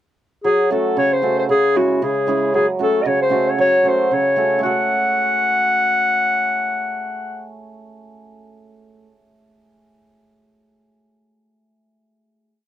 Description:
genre	balkan folk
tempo	115 BPM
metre	2/4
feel	swing 54% on 16ths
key	F# minor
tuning	A4 = 439 Hz
part	mellow clarinet	melody	0.4-7.5 s	F#4 to F#5	-16 LUFS	left 2 dB	none
part	hammered dulcimer	accompaniment	0.4-9.0 s	C#3 to A4	-22 LUFS	right 4 dB	none
room	light reverb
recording	dry, close 1970s-style studio recording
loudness	-15 LUFS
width	side -11 dB against mid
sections	0.5-4.6 A section; 4.6-6.7 final chord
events	none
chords	0.5 F#m; 1.5 C#m; 2.5 F#m

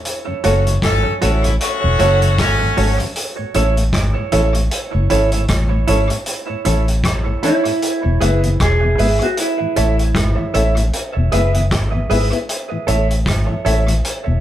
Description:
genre	roots reggae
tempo	77 BPM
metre	4/4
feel	swing 58% on 16ths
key	A major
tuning	A4 = 440 Hz
part	vintage drum kit	drums	0.0-14.3 s	hi-hat, kick drum, rim click	-22 LUFS	equal	tape echo
part	mellow tonewheel organ	accompaniment	0.3-14.3 s	E2 to E4	-25 LUFS	left 2 dB	slow rotary speaker
part	clear horn section	second line	0.4-3.0 s	F#3 to A4	-19 LUFS	left 1 dB	none
part	clean electric guitar	accompaniment	0.4-13.8 s	E4 to E5	-24 LUFS	right 7 dB	tape echo
part	bright concert grand piano	stabs	0.4-13.9 s	C#4 to E5	-22 LUFS	left 1 dB	none
part	vintage muted fingered electric bass	bass	0.5-14.4 s	E1 to A1	-16 LUFS	equal	none
part	mellow electric guitar	melody	7.4-10.9 s	E4 to G#4	-20 LUFS	right 1 dB	none
room	moderate studio reverb, RT60 0.8 s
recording	band playing live in one room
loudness	-14 LUFS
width	side -12 dB against mid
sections	0.0-6.3 A section; 6.3-14.4 B section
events	none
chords	0.0 F#m; 3.2 A; 7.8 E; 9.4 A; 10.9 E; 12.5 A

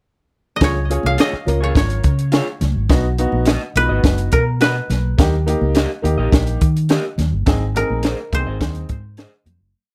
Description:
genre	uptempo 1960s-style soul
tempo	105 BPM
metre	4/4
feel	straight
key	Db major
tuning	A4 = 440 Hz
part	koto	melody	0.6-9.9 s	Bb4 to F5	-24 LUFS	equal	tape echo
part	clear upright piano	accompaniment	0.6-8.9 s	Bb3 to Bb4	-26 LUFS	equal	none
part	vintage muted fingered electric bass	bass	0.6-9.7 s	Gb1 to Eb3	-22 LUFS	equal	none
part	compact cocktail drum kit	drums	0.6-9.6 s	hi-hat, kick drum, snare drum	-19 LUFS	equal	none
part	congas	percussion	0.6-9.6 s	none	-34 LUFS	equal	none
part	electric guitar through a small old amp	stabs	1.2-9.3 s	F4 to Eb5	-28 LUFS	equal	none
room	light reverb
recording	none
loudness	-18 LUFS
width	mono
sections	0.0-0.6 pickup bar; 0.6-9.7 verse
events	fade-out 7.5-9.7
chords	0.0 N.C.; 0.6 Db; 2.9 Cb; 5.2 Eb; 7.5 Ab

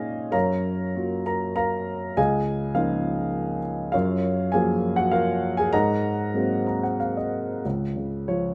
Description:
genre	classical, lyrical solo piano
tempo	89-106 BPM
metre	3/4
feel	rubato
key	unclear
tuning	A4 = 441 Hz
part	dark grand piano	solo	0.0-8.5 s	Db2 to Bb5	-25 LUFS	equal	none
room	light reverb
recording	close, detailed microphones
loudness	-25 LUFS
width	mono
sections	0.0-7.6 A section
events	grand piano fill 6.3-7.6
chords	0.3 Gbmaj7; 2.2 Db69; 3.9 Gbmaj7; 5.7 Ab9; 7.6 Db

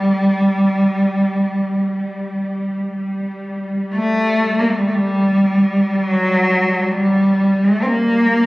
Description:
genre	caucasian folk, Caucasian lament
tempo	57-62 BPM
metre	3/4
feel	rubato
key	G harmonic minor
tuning	A4 = 440 Hz
part	warm cello	melody	0.0-8.5 s	F#3 to C4	-14 LUFS	equal	none
part	rich symphonic cello section	drone	0.0-8.5 s	G3	-25 LUFS	equal	none
room	wet church reverb, RT60 2.8 s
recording	recorded on a phone in the room, studio reverb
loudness	-15 LUFS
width	side -20 dB against mid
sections	0.0-2.9 A section; 2.9-8.5 B section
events	none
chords	none

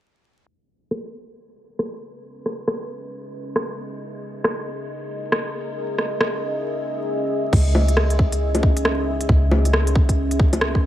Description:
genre	future garage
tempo	136 BPM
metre	4/4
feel	swing 61% on 16ths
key	C# dorian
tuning	A4 = 437 Hz
part	deep dark ambient pad	sustained chords	2.2-10.9 s	C#4 to E5	-26 LUFS	equal	chorus, built-in reverb, sidechain pumping
part	organic electronic drum kit	drums	0.9-10.7 s	bongos, crash cymbal, hi-hat, rim click	-24 LUFS	equal	overdrive
part	soft 808-style bass	bass	7.5-10.9 s	C#2	-20 LUFS	equal	sidechain pumping
part	electronic kick drum	drums	7.5-10.8 s	none	-18 LUFS	equal	overdrive
room	light reverb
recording	vinyl crackle, low-pass filter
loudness	-19 LUFS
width	side -12 dB against mid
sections	0.5-7.5 A section; 7.5-10.9 B section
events	filter sweep on ambient pad 0.5-7.5; filter sweep 0.5-7.5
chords	0.5 C#m7

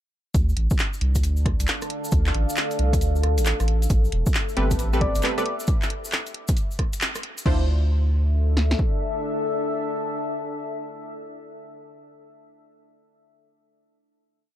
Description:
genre	UK garage, two-step garage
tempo	135 BPM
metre	4/4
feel	swing 64% on 16ths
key	D minor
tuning	A4 = 441 Hz
part	soft dub sub bass	bass	0.3-8.8 s	E1 to D2	-21 LUFS	equal	none
part	garage drum kit	drums	0.3-7.6 s	crash cymbal, handclaps, hi-hat, rim click	-28 LUFS	equal	none
part	punchy analog drum machine	drums	0.3-8.9 s	kick drum, snare drum	-23 LUFS	equal	none
part	cabasa	percussion	0.3-7.4 s	none	-38 LUFS	left 3 dB	none
part	deep dark ambient pad	texture	1.1-11.8 s	D4 to F5	-30 LUFS	left 2 dB	chorus, built-in reverb, sidechain pumping
part	punchy chord stab	stabs	4.6-12.2 s	C4 to C5	-28 LUFS	right 1 dB	chorus, dub echo
part	soft struck synth lead	melody	5.0-5.5 s	D5	-31 LUFS	left 3 dB	chorus, dub echo
room	little or no reverb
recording	dark, warm production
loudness	-21 LUFS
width	side -12 dB against mid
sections	0.3-7.5 groove; 7.5-11.0 final chord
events	band accent 7.0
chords	0.3 Dm; 3.7 Am9; 7.5 Dm9

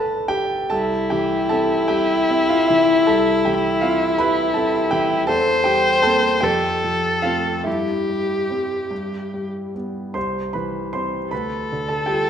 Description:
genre	classical, romantic duo for viola and grand piano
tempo	45-55 BPM (dotted quarters)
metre	6/8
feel	rubato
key	C major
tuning	A4 = 440 Hz
part	rich viola	melody	0.0-12.3 s	E4 to C5	-20 LUFS	left 2 dB	none
part	clear grand piano	accompaniment	0.0-12.3 s	G1 to C6	-21 LUFS	right 1 dB	none
room	wet recital hall reverb, RT60 1.4 s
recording	none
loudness	-17 LUFS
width	side -8 dB against mid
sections	0.7-12.3 A section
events	none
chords	0.0 G; 0.7 C; 5.3 C7/E; 6.4 F; 7.7 C/G; 8.9 G; 10.2 C; 11.3 G7/D

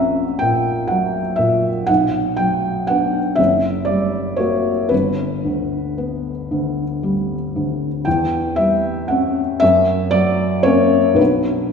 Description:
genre	classical, romantic nocturne for solo piano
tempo	33-41 BPM (dotted quarters)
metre	12/8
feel	rubato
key	unclear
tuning	A4 = 440 Hz
part	felt-muted upright piano	solo	0.0-11.7 s	F#1 to A#5	-16 LUFS	left 1 dB	none
room	wet scoring stage reverb, RT60 1.9 s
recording	heard from further back in the room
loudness	-16 LUFS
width	side -6 dB against mid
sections	0.0-11.7 A section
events	none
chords	0.0 F#/A#; 1.9 Bm; 3.4 F#; 4.9 G; 8.1 C#dim/E; 9.6 F#; 11.2 Bm

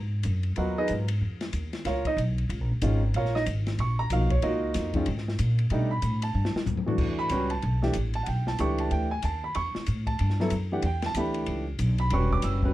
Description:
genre	modal jazz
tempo	187 BPM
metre	4/4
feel	swing 62% on 8ths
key	G# dorian, E dorian from 7.0 s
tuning	A4 = 439 Hz
part	upright bass	bass	0.0-12.7 s	E1 to B2	-27 LUFS	equal	none
part	open jazz drum kit	drums	0.2-12.7 s	crash cymbal, hi-hat, kick drum, ride cymbal, snare drum, toms	-34 LUFS	left 2 dB	none
part	warm grand piano	accompaniment	0.6-12.7 s	D#3 to E6	-28 LUFS	right 1 dB	none
room	light reverb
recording	dark, warm production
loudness	-25 LUFS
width	side -15 dB against mid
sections	0.0-7.0 A section; 7.0-12.7 A section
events	drum fill 6.4-7.0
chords	0.0 G#m7; 5.7 B7alt; 7.0 Em9; 12.1 Asus2/E (rootless)

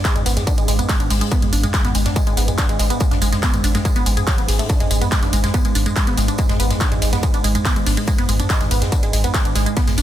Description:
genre	driving peak-time techno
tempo	142 BPM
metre	4/4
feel	straight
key	G# minor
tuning	A4 = 440 Hz
part	resonant blip pluck	riff	0.0-10.0 s	F#3 to G#4	-23 LUFS	right 2 dB	phaser, cassette tape, sidechain pumping, ping-pong delay
part	metallic inharmonic drone	drone	0.0-10.0 s	G#2	-26 LUFS	equal	chorus, built-in reverb, sidechain pumping
part	electronic kick drum	drums	0.0-9.9 s	none	-19 LUFS	equal	distortion, overdrive
part	techno drum kit	drums	0.0-10.0 s	handclaps, hi-hat, ride cymbal, tambourine, toms	-23 LUFS	equal	overdrive, sidechain pumping on hats, sidechain pumping on cymbals, sidechain pumping on perc, sidechain pumping on toms
part	unplugged drum kit	drums	0.0-10.0 s	hi-hat, snare drum, tambourine	-34 LUFS	left 1 dB	none
part	saturated sub bass	bass	0.2-10.0 s	G#1	-22 LUFS	equal	tube saturation, sidechain pumping, low-pass filter
room	small room ambience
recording	dense, heavily limited modern master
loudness	-16 LUFS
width	side -12 dB against mid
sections	0.0-10.0 A section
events	none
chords	0.0 G#m

